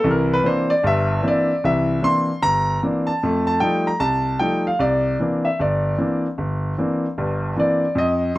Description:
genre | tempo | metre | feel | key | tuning
solo jazz | 152 BPM | 4/4 | swing 64% on 8ths | C mixolydian | A4 = 443 Hz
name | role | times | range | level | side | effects
clear grand piano | solo | 0.0-8.4 s | G1 to C6 | -18 LUFS | equal | none
room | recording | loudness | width
little or no reverb | close, detailed microphones | -18 LUFS | side -17 dB against mid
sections
0.0-1.6 A section; 1.6-8.4 B section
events
grand piano solo 0.0-1.6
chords
0.1 C9; 3.2 F9; 4.8 C9

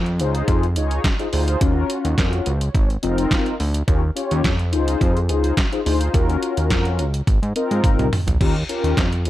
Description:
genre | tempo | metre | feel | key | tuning
early-eighties boogie funk | 106 BPM | 4/4 | straight | unclear | A4 = 440 Hz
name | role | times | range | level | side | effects
fat analog bass | bass | 0.0-9.3 s | F1 to Ab2 | -20 LUFS | equal | none
detuned 8-bit digital drum machine | drums | 0.1-9.3 s | crash cymbal, handclaps, hi-hat, kick drum, snare drum, toms | -21 LUFS | equal | none
mellow synth brass | accompaniment | 0.2-9.3 s | C4 to Db5 | -23 LUFS | left 3 dB | chorus
room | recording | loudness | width
little or no reverb | dark, warm production | -17 LUFS | side -14 dB against mid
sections
0.0-9.3 A section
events
drum fill 7.8-8.4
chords
0.2 Dbmaj9; 1.6 Ebm9; 2.7 Ab69; 3.9 Eb9; 4.7 Dbmaj9; 6.1 Ebm9; 7.3 Ab69; 8.4 Eb9

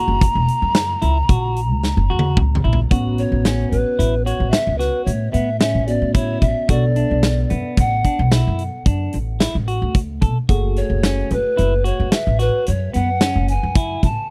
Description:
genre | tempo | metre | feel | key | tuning
progressive instrumental, band music in an uneven meter | 111 BPM | 7/4 | straight | unclear | A4 = 440 Hz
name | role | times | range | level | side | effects
mellow hollow polished pan flute | melody | 0.0-14.3 s | B4 to A#5 | -25 LUFS | equal | tape echo
dark grand piano | accompaniment | 0.0-14.3 s | A3 to A4 | -31 LUFS | equal | none
clean electric guitar | arpeggios | 0.0-14.1 s | B3 to A4 | -28 LUFS | equal | none
upright bass | bass | 0.1-14.1 s | E1 to B2 | -22 LUFS | equal | none
big rock drum kit | drums | 0.2-14.2 s | hi-hat, kick drum, snare drum, toms | -21 LUFS | equal | none
room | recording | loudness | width
little or no reverb | dry, close 1970s-style studio recording | -18 LUFS | mono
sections
0.0-2.9 A section; 2.9-14.3 B section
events
drum fill 1.8-2.9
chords
0.0 F#7; 2.9 A6; 6.7 Bm7; 10.5 F#madd9

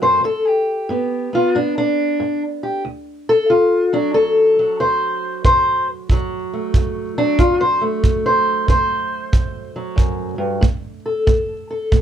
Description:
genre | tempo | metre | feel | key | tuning
acoustic country blues, solo or duo | 92 BPM | 4/4 | swing 65% on 8ths | D mixolydian | A4 = 439 Hz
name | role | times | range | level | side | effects
fingerpicked steel-string acoustic guitar | melody | 0.0-12.0 s | D2 to C5 | -16 LUFS | left 1 dB | none
kick drum | drums | 5.4-12.0 s | none | -17 LUFS | right 1 dB | none
room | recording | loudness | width
light reverb | dark, warm production | -15 LUFS | side -9 dB against mid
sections
0.0-12.0 A section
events
steel-string acoustic guitar solo 0.0-12.0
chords
0.2 G; 2.8 D7; 10.6 N.C.

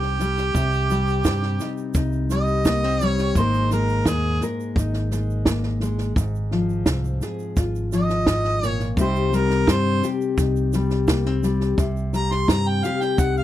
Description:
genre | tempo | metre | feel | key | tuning
acoustic folk duo or small band | 86 BPM | 4/4 | straight | C minor | A4 = 441 Hz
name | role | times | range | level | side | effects
warm harmonica | melody | 0.0-13.4 s | G4 to C6 | -25 LUFS | right 2 dB | none
nylon-string guitar | accompaniment | 0.0-13.4 s | Ab2 to Bb4 | -24 LUFS | left 4 dB | none
fingered electric bass | bass | 0.0-13.4 s | Ab1 to G2 | -24 LUFS | equal | none
compact cocktail drum kit | drums | 0.0-13.3 s | kick drum, snare drum | -23 LUFS | right 1 dB | none
egg shaker | percussion | 0.2-13.4 s | none | -40 LUFS | right 21 dB | none
room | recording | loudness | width
studio reverb | dry, close 1970s-style studio recording | -19 LUFS | side -13 dB against mid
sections
0.0-13.4 A section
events
harmonica solo 0.0-13.4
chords
0.0 Cm; 3.4 Absus2; 6.2 Fm/Ab; 9.0 Cm

